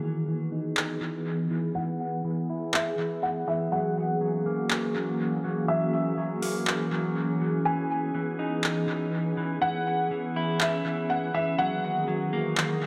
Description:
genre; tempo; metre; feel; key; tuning
hip hop, atmospheric cloud-rap; 122 BPM; 4/4; half-time; E lydian; A4 = 440 Hz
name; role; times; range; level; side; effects
felt-muted upright piano; melody; 0.0-12.0 s; E5 to G#5; -32 LUFS; equal; low-pass filter, dub echo
glassy FM pad; sustained chords; 0.0-12.9 s; D#3 to G#4; -31 LUFS; equal; ensemble chorus, built-in reverb, low-pass filter
clean electric guitar; arpeggios; 0.0-12.9 s; E3 to E4; -35 LUFS; equal; low-pass filter, dub echo
booming analog drum machine; drums; 0.8-12.7 s; handclaps, hi-hat; -33 LUFS; equal; dub echo
room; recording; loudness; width
light reverb, digital ambience; echo-heavy mix; -28 LUFS; mono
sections
0.0-12.9 A section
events
filter sweep 0.0-12.9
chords
0.0 Emaj7; 3.7 F#9; 7.7 Emaj7; 11.6 F#13

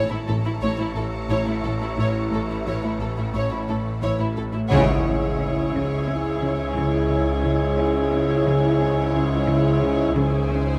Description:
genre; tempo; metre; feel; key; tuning
cinematic, suspense film score; 88 BPM; 4/4; straight; C# minor; A4 = 439 Hz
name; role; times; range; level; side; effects
warm symphonic violin section; melody; 0.0-10.8 s; E4 to C#5; -33 LUFS; equal; none
rich studio violin section; second line; 0.0-10.8 s; E4 to C#5; -36 LUFS; equal; none
dark symphonic viola section; accompaniment; 0.0-10.8 s; D#3 to E4; -37 LUFS; equal; none
wind-like tuned noise texture; sustained chords; 0.0-10.8 s; E4 to C#6; -32 LUFS; equal; built-in reverb
rich chamber cello section; riff; 0.0-10.7 s; A2 to C#4; -30 LUFS; equal; none
bowed-like drone; drone; 0.1-10.8 s; A1 to C#2; -32 LUFS; equal; built-in reverb
warm symphonic violin section; texture; 0.0-4.3, 10.2-10.8 s; A5 to E6; -41 LUFS; equal; none
warm symphonic cello section; bass; 0.1-10.8 s; A2 to C#3; -31 LUFS; equal; none
dark symphonic double bass section; bass; 0.3-10.8 s; A1 to C#2; -30 LUFS; equal; none
worn celesta; texture; 3.3-10.2 s; F#5 to C#6; -40 LUFS; equal; none
clear trombone section; sustained chords; 4.7-10.8 s; G#2 to G#3; -30 LUFS; equal; none
mellow French horn section; sustained chords; 4.7-10.8 s; D#3 to B#4; -30 LUFS; equal; none
impact; sound effects; 4.7-7.4 s; none; -30 LUFS; equal; none
room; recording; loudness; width
moderate recital hall reverb, RT60 1.4 s; close, detailed microphones; -22 LUFS; mono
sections
0.0-4.7 A section; 4.7-10.8 B section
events
band accent 4.7-5.4; impact 4.7-7.4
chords
0.0 A; 4.7 C#m; 10.2 G#/C#

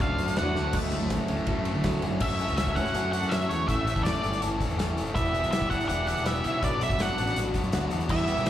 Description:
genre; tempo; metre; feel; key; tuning
indie rock; 163 BPM; 4/4; straight; D major; A4 = 440 Hz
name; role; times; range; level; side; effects
octave-fuzz lead guitar; melody; 0.0-8.5 s; C#5 to F#5; -30 LUFS; right 1 dB; distortion, slapback echo, analog delay
warm analog pad; sustained chords; 0.0-8.5 s; D3 to C#6; -40 LUFS; equal; none
crunchy overdriven guitar; riff; 0.0-2.2, 8.1-8.5 s; D3 to F#4; -32 LUFS; right 4 dB; wide subtle chorus, slapback echo, analog delay
fuzz guitar; riff; 0.0-8.5 s; E3 to A4; -31 LUFS; left 3 dB; distortion, slapback echo
growling picked electric bass; bass; 0.0-8.5 s; E1 to D3; -31 LUFS; equal; overdrive
loose indie drum kit; drums; 0.0-8.5 s; crash cymbal, hi-hat, kick drum, ride cymbal, snare drum; -31 LUFS; equal; none
tambourine; percussion; 0.8-8.5 s; none; -48 LUFS; right 5 dB; none
breathy trumpet; second line; 2.2-8.5 s; A3 to D4; -42 LUFS; right 4 dB; none
room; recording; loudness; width
studio ambience; live gig heard through the venue's PA, club reverb; -24 LUFS; side -11 dB against mid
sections
0.7-2.2 A section; 2.2-8.5 B section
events
drum fill 0.6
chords
0.0 Dmaj7; 2.2 F#m7; 3.7 A7sus4; 5.2 Em7; 6.6 Bm7

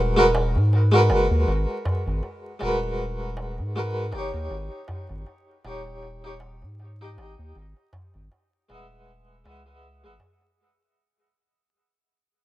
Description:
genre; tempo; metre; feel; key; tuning
trip hop; 79 BPM; 4/4; swing 56% on 16ths; G# minor; A4 = 441 Hz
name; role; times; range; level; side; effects
harpsichord; accompaniment; 0.0-10.2 s; G#3 to F#5; -24 LUFS; equal; tremolo, low-pass filter, tape echo
round analog bass; bass; 0.0-10.2 s; D#1 to G#2; -24 LUFS; equal; none
darbuka; percussion; 0.2-10.5 s; none; -32 LUFS; right 1 dB; none
room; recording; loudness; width
light reverb, studio ambience; rough home demo mix, vinyl crackle; -21 LUFS; side -15 dB against mid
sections
0.0-10.6 A section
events
fade-out 0.0-10.6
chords
0.0 G#m9; 4.5 D#7; 7.5 C#m11

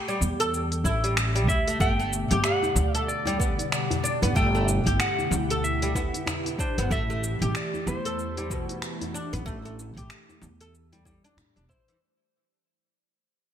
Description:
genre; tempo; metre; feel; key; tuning
organic downtempo; 94 BPM; 4/4; swing 59% on 16ths; A dorian; A4 = 440 Hz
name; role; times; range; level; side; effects
clean lap steel guitar; melody; 0.0-12.0 s; C5 to G5; -32 LUFS; left 1 dB; digital delay
oud; arpeggios; 0.1-12.0 s; B2 to A4; -30 LUFS; equal; digital delay
organic electronic drum kit; drums; 0.1-12.0 s; cabasa, finger snaps, hi-hat; -31 LUFS; equal; gated reverb
upright bass; bass; 0.2-11.8 s; E1 to A2; -28 LUFS; equal; sidechain pumping
electronic kick drum; drums; 0.8-11.8 s; none; -29 LUFS; equal; none
airy breathy pad; sustained chords; 1.8-12.0 s; B2 to D5; -33 LUFS; equal; chorus, sidechain pumping
djembe; percussion; 2.3-12.0 s; none; -36 LUFS; left 2 dB; none
room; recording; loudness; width
light reverb, small room ambience; bright 1980s-style digital production; -23 LUFS; side -9 dB against mid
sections
0.0-12.0 A section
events
fade-out 5.2-12.0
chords
0.0 A7(no3); 1.8 Gmaj7; 6.9 Am7

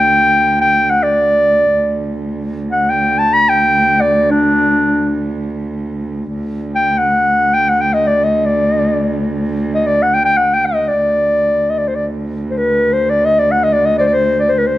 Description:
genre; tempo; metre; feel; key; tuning
Turkish makam ensemble; free time; none; none; D makam hicaz; A4 = 440 Hz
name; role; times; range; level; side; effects
mellow clarinet; melody; 0.0-14.8 s; D4 to B5-43c; -12 LUFS; left 1 dB; none
rich cello; drone; 0.0-14.8 s; D2; -19 LUFS; right 2 dB; none
room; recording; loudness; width
moderate recital hall reverb, RT60 1.4 s; close, detailed microphones; -12 LUFS; side -15 dB against mid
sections
0.0-6.4 A section; 6.4-14.8 A section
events
none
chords
none

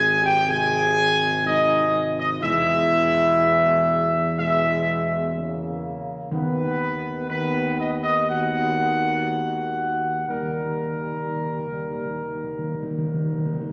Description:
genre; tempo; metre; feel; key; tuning
classical; 58-62 BPM; 4/4; straight; unclear; A4 = 442 Hz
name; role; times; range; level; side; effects
warm trumpet section; melody; 0.0-13.7 s; Bb4 to Ab5; -24 LUFS; equal; none
dark French horn section; sustained chords; 0.0-13.7 s; Bb3 to Ab4; -35 LUFS; equal; none
mellow trombone section; sustained chords; 0.0-13.7 s; B2 to B3; -33 LUFS; equal; none
mellow tuba; bass; 0.0-13.7 s; Ab1 to E2; -32 LUFS; equal; none
timpani; percussion; 6.3-13.7 s; D#3; -32 LUFS; equal; none
room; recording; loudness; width
wet concert hall reverb, RT60 2.1 s; none; -23 LUFS; mono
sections
0.0-13.7 A section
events
timpani fill 10.3-13.7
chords
0.0 Ab; 2.4 E; 6.3 B/D#; 10.3 Eb

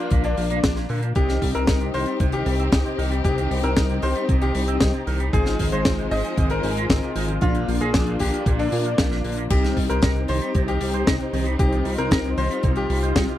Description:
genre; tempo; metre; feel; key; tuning
italo disco; 115 BPM; 4/4; straight; C minor; A4 = 444 Hz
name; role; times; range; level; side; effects
bright concert grand piano; melody; 0.0-13.4 s; D4 to Eb5; -28 LUFS; left 2 dB; tape echo
warm studio string section; sustained chords; 0.0-13.4 s; Ab3 to C5; -30 LUFS; left 2 dB; none
electric guitar with an envelope filter; arpeggios; 0.0-13.4 s; Bb2 to C5; -32 LUFS; right 6 dB; tape echo
mellow synth brass; stabs; 0.0-13.3 s; Bb3 to Eb5; -30 LUFS; left 2 dB; chorus
chorused synth bass; bass; 0.1-13.3 s; Ab1 to Bb2; -24 LUFS; equal; none
electronic kick drum; drums; 0.1-13.3 s; none; -22 LUFS; equal; none
tight funk drum kit; drums; 0.1-13.4 s; crash cymbal, hi-hat, snare drum; -25 LUFS; left 1 dB; none
room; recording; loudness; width
little or no reverb; dry, close 1970s-style studio recording; -19 LUFS; side -13 dB against mid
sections
0.0-13.4 A section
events
none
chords
0.0 Bb; 1.2 Cm; 5.3 Ab6; 7.4 Bb; 9.5 Cm

